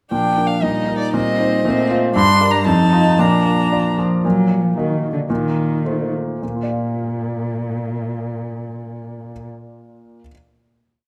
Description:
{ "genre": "quick classical-period movement for piano quartet", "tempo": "102-119 BPM", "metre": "2/4", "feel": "straight", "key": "Bb major", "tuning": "A4 = 441 Hz", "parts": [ { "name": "warm violin", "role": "melody", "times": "0.1-4.0 s", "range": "D5 to C6", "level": "-22 LUFS", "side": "equal", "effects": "none" }, { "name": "dark cello", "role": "second line", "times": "0.1-9.5 s", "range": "Bb2 to A3", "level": "-24 LUFS", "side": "equal", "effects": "none" }, { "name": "clear grand piano", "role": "accompaniment", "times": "0.1-10.3 s", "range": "F2 to F5", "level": "-22 LUFS", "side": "equal", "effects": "none" }, { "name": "warm viola", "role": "accompaniment", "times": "0.1-4.0 s", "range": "C4 to Eb4", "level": "-24 LUFS", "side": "equal", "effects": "none" } ], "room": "moderate recital hall reverb, RT60 1.6 s", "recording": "close, detailed microphones", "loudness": "-18 LUFS", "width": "mono", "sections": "0.1-4.2 A section; 4.2-6.4 coda; 6.4-8.7 final chord", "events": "slowing down 3.7-6.4", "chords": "0.1 Bb; 0.6 Eb/Bb; 1.1 Cm7/Bb; 1.6 F/Bb; 2.1 Gm; 2.7 F7; 3.2 Bb; 4.2 Ebm/Bb; 5.3 F7/Bb; 6.4 Bb" }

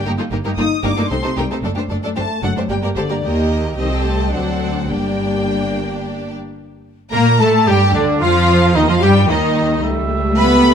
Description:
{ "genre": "quick classical-period movement for symphony orchestra", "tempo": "111 BPM", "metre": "3/4", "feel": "rubato", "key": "G minor", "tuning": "A4 = 441 Hz", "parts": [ { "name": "rich studio violin section", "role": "melody", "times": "0.0-10.7 s", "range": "D5 to Eb6", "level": "-23 LUFS", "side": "left 4 dB", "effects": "none" }, { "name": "clear studio violin section", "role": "second line", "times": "0.0-10.7 s", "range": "D4 to Eb5", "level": "-24 LUFS", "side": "left 1 dB", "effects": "none" }, { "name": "rich studio viola section", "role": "accompaniment", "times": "0.0-10.7 s", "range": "D3 to G4", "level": "-22 LUFS", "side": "equal", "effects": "none" }, { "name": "mellow French horn section", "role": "sustained chords", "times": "0.0-10.7 s", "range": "D3 to G4", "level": "-22 LUFS", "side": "left 4 dB", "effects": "none" }, { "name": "rich studio double bass section", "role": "bass", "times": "0.0-10.7 s", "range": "F#1 to Bb2", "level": "-20 LUFS", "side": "right 2 dB", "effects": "none" }, { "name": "warm studio cello section", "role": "bass", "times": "0.1-10.7 s", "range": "C2 to B3", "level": "-22 LUFS", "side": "equal", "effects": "none" }, { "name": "mellow cor anglais", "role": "second line", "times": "7.1-10.7 s", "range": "D4 to B4", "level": "-22 LUFS", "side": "right 2 dB", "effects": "none" }, { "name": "mellow flute section", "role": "second line", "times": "7.1-10.7 s", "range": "D5 to B5", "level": "-25 LUFS", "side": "left 2 dB", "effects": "none" }, { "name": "mellow trumpet", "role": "stabs", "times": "7.1-10.7 s", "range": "D4 to E5", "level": "-22 LUFS", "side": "right 2 dB", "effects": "none" } ], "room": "light reverb", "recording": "close, detailed microphones", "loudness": "-14 LUFS", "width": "side -7 dB against mid", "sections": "0.0-6.6 A section; 6.6-10.7 A section", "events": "none", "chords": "0.0 Eb/G; 1.1 Adim/C; 1.6 D/F#; 2.7 Gm; 3.2 Eb; 3.8 Am7b5/C; 4.3 D7; 4.9 Gm; 6.6 N.C.; 7.7 G5; 8.2 Ebadd9; 9.8 A7/C#" }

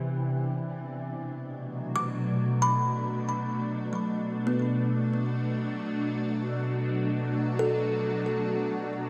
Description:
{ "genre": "ambient", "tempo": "free time", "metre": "none", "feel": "none", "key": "unclear", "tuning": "A4 = 440 Hz", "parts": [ { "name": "evolving wavetable pad", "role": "sustained chords", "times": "0.0-9.1 s", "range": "B2 to G4", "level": "-30 LUFS", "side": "equal", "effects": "ensemble chorus, built-in reverb, phaser, shimmer reverb" }, { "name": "kalimba", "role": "arpeggios", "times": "2.0-9.1 s", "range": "F#3 to D6", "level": "-33 LUFS", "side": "equal", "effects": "delay, shimmer reverb" } ], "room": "wet cathedral reverb, RT60 5.5 s", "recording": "worn, warbling old tape, cassette tape, warbly pitch drift", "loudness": "-29 LUFS", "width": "mono", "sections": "0.0-9.1 A section", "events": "none", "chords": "0.0 Cmaj9; 1.0 Bm7" }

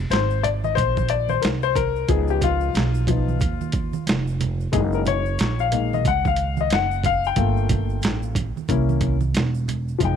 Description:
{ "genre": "hip hop, jazz-hop", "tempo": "91 BPM", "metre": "4/4", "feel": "swing 62% on 16ths", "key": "unclear", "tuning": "A4 = 439 Hz", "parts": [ { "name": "upright bass", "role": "bass", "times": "0.0-10.2 s", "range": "E1 to Eb2", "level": "-23 LUFS", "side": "right 2 dB", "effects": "tube saturation" }, { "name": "warm upright piano", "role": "accompaniment", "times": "0.1-10.2 s", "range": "F3 to G5", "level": "-23 LUFS", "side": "left 12 dB", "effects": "none" }, { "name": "boom bap sampler-style drum kit", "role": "drums", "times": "0.1-10.2 s", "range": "hi-hat, kick drum, snare drum", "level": "-24 LUFS", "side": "right 2 dB", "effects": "overdrive" }, { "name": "tube shaker and congas", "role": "percussion", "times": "0.1-10.0 s", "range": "none", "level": "-31 LUFS", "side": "right 14 dB", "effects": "none" } ], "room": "small room ambience", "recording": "1960s-style stereo with parts hard left and right", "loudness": "-19 LUFS", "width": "side -8 dB against mid", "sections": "0.0-10.0 A section", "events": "upright piano solo 0.0-10.0", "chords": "0.0 Fm (rootless); 2.1 Db7; 4.7 Gb6; 7.4 Gm9; 8.7 C7b9" }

